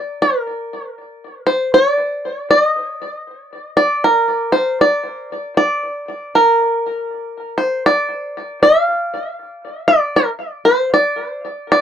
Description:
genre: hawaiian.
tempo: 78 BPM.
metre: 4/4.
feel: swing 63% on 8ths.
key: unclear.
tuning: A4 = 438 Hz.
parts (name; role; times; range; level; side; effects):
bluegrass banjo; solo; 0.0-11.8 s; Bb4 to F5; -14 LUFS; equal; tape echo.
room: light reverb.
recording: dry, close 1970s-style studio recording.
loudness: -14 LUFS.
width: side -9 dB against mid.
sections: 0.0-11.8 A section.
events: none.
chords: none.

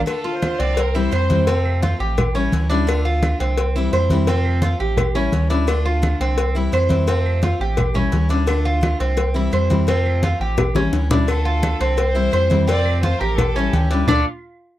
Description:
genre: latin, Cuban son and guajira.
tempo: 171 BPM.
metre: 4/4.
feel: straight.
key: D minor.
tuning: A4 = 440 Hz.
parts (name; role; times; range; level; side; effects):
warm chamber violin section; second line; 0.0-1.7, 11.3-14.2 s; F4 to D5; -26 LUFS; equal; none.
round analog bass; bass; 0.0-14.2 s; A1 to F2; -20 LUFS; right 1 dB; none.
picked steel-string acoustic guitar; accompaniment; 0.1-14.2 s; C3 to F4; -25 LUFS; left 3 dB; none.
claves; percussion; 0.1-14.2 s; none; -34 LUFS; right 6 dB; none.
congas; percussion; 0.1-14.2 s; none; -23 LUFS; equal; none.
cowbell and bongos; percussion; 0.1-14.2 s; none; -26 LUFS; left 5 dB; none.
Cuban tres; arpeggios; 0.2-14.2 s; C4 to D5; -23 LUFS; right 2 dB; none.
room: little or no reverb.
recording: dry, close 1970s-style studio recording.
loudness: -16 LUFS.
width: side -14 dB against mid.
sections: 0.1-11.3 A section; 11.3-14.1 B section.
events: drum fill 10.6-11.3.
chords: 0.1 Dm; 0.8 C; 1.5 F; 2.2 A7; 2.9 Dm; 3.6 C; 4.3 F; 5.0 A7; 5.7 Dm; 6.4 C; 7.1 F; 7.8 A7; 8.5 Dm; 9.2 C; 9.9 F; 10.6 A7; 11.3 Dm; 12.0 C; 12.7 F; 13.4 A7; 14.1 Dm.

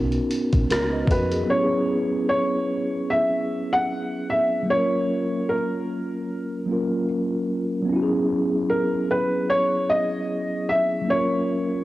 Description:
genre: lo-fi hip hop.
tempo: 75 BPM.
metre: 4/4.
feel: swing 56% on 16ths.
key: unclear.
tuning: A4 = 440 Hz.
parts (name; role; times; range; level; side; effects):
mellow tine electric piano; accompaniment; 0.0-11.8 s; F#3 to D#5; -24 LUFS; equal; medium stereo tremolo, low-pass filter, cassette tape.
upright bass; bass; 0.0-1.4 s; A#1 to F2; -27 LUFS; equal; transformer saturation.
boom bap sampler-style drum kit; drums; 0.1-1.5 s; hi-hat, kick drum, rim click; -24 LUFS; equal; cassette tape.
felt-muted upright piano; melody; 0.7-11.8 s; A#4 to F#5; -23 LUFS; equal; low-pass filter, cassette tape.
room: moderate lush hall reverb, RT60 3.0 s.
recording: home recording on cassette.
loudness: -21 LUFS.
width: side -16 dB against mid.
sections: 0.0-1.5 A section; 1.5-11.8 B section.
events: none.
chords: 0.0 Bmaj9; 1.5 E69; 4.7 Gbmaj7; 7.9 E69; 11.1 Gbmaj7.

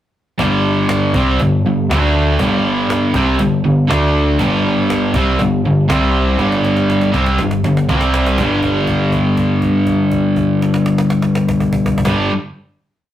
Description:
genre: blues rock power trio and southern rock.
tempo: 120 BPM.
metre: 4/4.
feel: straight.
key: unclear.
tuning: A4 = 440 Hz.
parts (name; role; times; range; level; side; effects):
cranked stack guitar; riff; 0.4-12.3 s; G2 to D4; -14 LUFS; equal; overdrive.
growling picked electric bass; bass; 0.4-12.3 s; G1 to D2; -18 LUFS; right 1 dB; overdrive.
cajon; drums; 0.4-12.2 s; none; -24 LUFS; equal; none.
room: wet studio reverb, RT60 0.6 s.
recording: rough rehearsal-room recording, warm saturation.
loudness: -13 LUFS.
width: side -12 dB against mid.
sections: 0.4-8.4 riff; 8.4-12.4 final chord.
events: drum fill 6.4-8.4; held note 8.4-12.1.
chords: 0.4 G5; 1.9 D5; 2.4 G5; 3.9 D5; 4.4 G5; 5.9 C5; 6.4 G5; 7.9 C5; 8.4 G5.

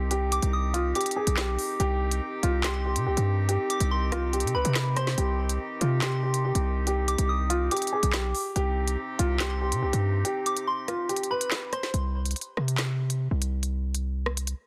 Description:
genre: hip hop, drill.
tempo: 142 BPM.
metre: 4/4.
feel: half-time.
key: C harmonic minor.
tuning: A4 = 440 Hz.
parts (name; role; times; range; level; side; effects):
warm baby grand piano; melody; 0.0-11.9 s; F4 to C5; -33 LUFS; equal; low-pass filter.
warm woodwind section; sustained chords; 0.0-11.9 s; C3 to G4; -38 LUFS; equal; none.
hard-hitting 808-style bass; bass; 0.0-14.5 s; B1 to C3; -29 LUFS; equal; none.
drill drum kit; drums; 0.1-14.6 s; handclaps, hi-hat, rim click, snare drum; -33 LUFS; equal; none.
soft synth bell; second line; 0.3-11.9 s; B5 to Eb6; -36 LUFS; equal; chorus, phaser, digital delay.
room: small room ambience.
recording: dense, heavily limited modern master.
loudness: -27 LUFS.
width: mono.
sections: 0.0-11.9 A section; 11.9-14.7 B section.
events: kick muted 10.2-11.9.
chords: 0.0 Cm; 11.9 N.C..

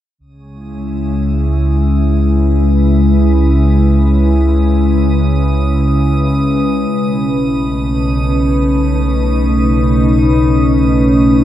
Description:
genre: ambient.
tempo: free time.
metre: none.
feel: none.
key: C# minor.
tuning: A4 = 440 Hz.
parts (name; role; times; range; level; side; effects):
glassy FM pad; sustained chords; 0.6-11.4 s; B2 to B4; -14 LUFS; left 1 dB; ensemble chorus, built-in reverb.
warm sub bass; bass; 0.2-11.4 s; B1 to C#2; -14 LUFS; equal; none.
analog drone; drone; 0.7-11.4 s; C#3 to C#4; -18 LUFS; equal; chorus.
drifting glass-harmonics texture; texture; 1.0-11.4 s; D#6; -28 LUFS; right 2 dB; chorus, built-in reverb.
room: wet spring reverb, RT60 2.3 s.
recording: none.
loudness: -10 LUFS.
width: side -12 dB against mid.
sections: 0.2-11.4 A section.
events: fade-in on synth texture 0.2-11.4.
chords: 0.2 C#m7; 6.9 B7.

